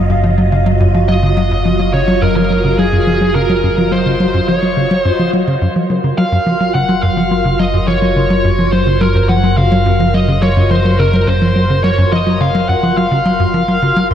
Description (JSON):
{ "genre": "ambient", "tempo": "106 BPM", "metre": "4/4", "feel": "straight", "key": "Gb lydian", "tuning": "A4 = 440 Hz", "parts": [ { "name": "phased string machine", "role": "sustained chords", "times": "0.0-14.1 s", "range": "Gb3 to Eb5", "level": "-18 LUFS", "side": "equal", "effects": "ensemble chorus, phaser" }, { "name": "analog drone", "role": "bass", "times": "0.0-14.1 s", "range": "Gb1", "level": "-17 LUFS", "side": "equal", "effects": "chorus" }, { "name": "pulsing gated texture", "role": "texture", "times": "0.0-14.1 s", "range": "F5 to C6", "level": "-26 LUFS", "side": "equal", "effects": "chorus, built-in reverb" }, { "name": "tight sequencer bass", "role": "riff", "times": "0.1-14.1 s", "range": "Gb2 to Gb3", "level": "-15 LUFS", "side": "equal", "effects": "analog chorus, tape echo" }, { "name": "bluesy overdriven lead guitar", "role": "melody", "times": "1.1-14.1 s", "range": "Ab4 to Gb5", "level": "-17 LUFS", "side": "equal", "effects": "distortion, tape echo" } ], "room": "moderate plate reverb, RT60 3.4 s", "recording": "echo-heavy mix", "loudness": "-11 LUFS", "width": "side -9 dB against mid", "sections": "0.0-14.1 A section", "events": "none", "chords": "0.0 Gbmaj7", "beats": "0.52 | 1.09 1.65 2.22 2.78 | 3.35 3.92 4.48 5.05 | 5.61 6.18 6.75 7.31 | 7.88 8.44 9.01 9.58 | 10.14 10.71 11.27 11.84 | 12.41 12.97 13.54 14.10" }